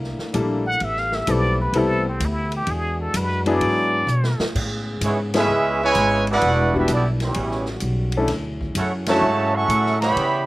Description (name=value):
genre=jazz, big band swing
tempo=128 BPM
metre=4/4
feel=swing 68% on 8ths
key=A major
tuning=A4 = 438 Hz
part: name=mellow trombone section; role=sustained chords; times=0.0-10.5 s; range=C#3 to G#4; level=-31 LUFS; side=equal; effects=none
part: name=upright bass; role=bass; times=0.0-10.5 s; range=E1 to C#3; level=-24 LUFS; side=equal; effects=none
part: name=swinging big-band drum kit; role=drums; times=0.0-10.3 s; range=crash cymbal, hi-hat, kick drum, ride cymbal, snare drum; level=-31 LUFS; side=equal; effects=none
part: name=bright upright piano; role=accompaniment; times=0.3-9.2 s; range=F#3 to A4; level=-22 LUFS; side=left 2 dB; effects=slapback echo
part: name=trumpet with plunger mute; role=melody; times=0.7-4.4 s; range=C4 to F#5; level=-24 LUFS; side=equal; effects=none
part: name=mellow trumpet section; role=melody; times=5.0-10.4 s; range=B3 to C#6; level=-20 LUFS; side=right 2 dB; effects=slapback echo
part: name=muted trombone section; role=second line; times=5.0-10.4 s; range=C#3 to F#4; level=-26 LUFS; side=right 2 dB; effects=slapback echo
room=little or no reverb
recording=none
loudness=-18 LUFS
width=side -19 dB against mid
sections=0.0-4.6 A section; 4.6-10.5 B section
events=muted trumpet solo 0.0-4.6; drum fill 4.1-4.6; band accent 5.3, 9.0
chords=0.0 C13; 0.8 Am11; 2.7 E9; 4.6 Amaj9; 6.4 Em7; 7.4 A13; 8.3 Dmaj9